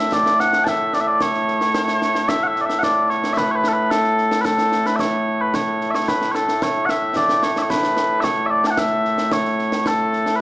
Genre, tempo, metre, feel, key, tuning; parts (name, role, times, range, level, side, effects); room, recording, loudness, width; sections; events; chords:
scottish traditional, Scottish pipe music; 111 BPM; 4/4; straight; A major; A4 = 440 Hz
mellow small bagpipes; melody; 0.0-10.4 s; A2 to A5; -17 LUFS; equal
concert snare drum and concert bass drum; drums; 0.1-10.4 s; -26 LUFS; right 1 dB
moderate scoring stage reverb, RT60 1.5 s; small speaker sound; -16 LUFS; side -21 dB against mid
0.0-6.6 A section; 6.6-10.4 B section